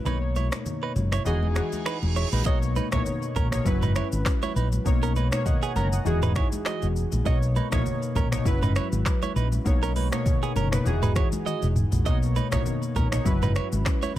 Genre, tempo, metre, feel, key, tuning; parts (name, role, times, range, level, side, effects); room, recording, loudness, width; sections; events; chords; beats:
afrobeats; 100 BPM; 4/4; swing 55% on 16ths; B major; A4 = 439 Hz
warm analog keys; accompaniment; 0.0-14.2 s; B2 to A#5; -29 LUFS; left 1 dB; chorus
direct-recorded clean electric guitar; riff; 0.1-14.2 s; B3 to D#5; -32 LUFS; right 8 dB; ping-pong delay
fingered electric bass; bass; 0.1-14.2 s; E1 to B1; -25 LUFS; equal
afro-pop drum kit; drums; 0.1-14.2 s; finger snaps, handclaps, hi-hat, kick drum, rim click, shaker, toms; -26 LUFS; equal
congas; percussion; 0.1-14.2 s; -35 LUFS; left 3 dB
reverse cymbal; sound effects; 1.5-2.5 s; -36 LUFS; right 6 dB
digital ambience; -22 LUFS; side -13 dB against mid
0.0-2.5 A section; 2.5-14.2 B section
break 0.1-2.5; reverse cymbal 1.5-2.5; drum fill 11.5-12.1
0.1 Bmaj9; 1.3 Emaj9; 2.5 Bmaj9; 3.7 F#7sus4; 4.9 Bmaj9; 6.1 Emaj9; 7.3 Bmaj9; 8.5 F#7sus4; 9.7 Bmaj9; 10.9 Emaj9; 12.1 Bmaj9; 13.3 F#7sus4
| 0.06 0.66 1.26 1.86 | 2.46 3.06 3.66 4.26 | 4.86 5.46 6.06 6.66 | 7.26 7.86 8.46 9.06 | 9.66 10.26 10.86 11.46 | 12.06 12.66 13.26 13.86